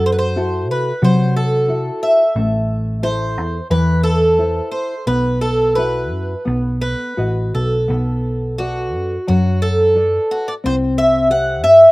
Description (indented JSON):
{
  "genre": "fado-style ballad",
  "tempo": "87 BPM",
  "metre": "4/4",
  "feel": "uneven beats, rubato",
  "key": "unclear",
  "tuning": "A4 = 440 Hz",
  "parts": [
    { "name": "picked twelve-string acoustic guitar", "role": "melody", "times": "0.0-11.9 s", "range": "F#4 to F#5", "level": "-16 LUFS", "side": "equal", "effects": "none" },
    { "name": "nylon-string guitar", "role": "accompaniment", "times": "0.0-11.8 s", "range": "E3 to E5", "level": "-21 LUFS", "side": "left 2 dB", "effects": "none" },
    { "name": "hollow-body short-scale picked electric bass", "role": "bass", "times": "0.0-11.9 s", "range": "A1 to C3", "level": "-20 LUFS", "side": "equal", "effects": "none" }
  ],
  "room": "little or no reverb",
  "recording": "recorded outdoors, with no room sound",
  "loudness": "-14 LUFS",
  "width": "side -21 dB against mid",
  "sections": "0.0-11.9 A section",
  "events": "none",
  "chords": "0.0 F#m7b5; 2.4 Am; 5.1 Bsus4; 6.5 B; 7.9 Bm7; 10.7 C",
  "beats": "0.38 1.04 1.70 | 2.37 3.04 3.71 4.38 | 5.07 5.77 6.46 7.18 | 7.90 8.60 9.29 9.97 | 10.65 11.31"
}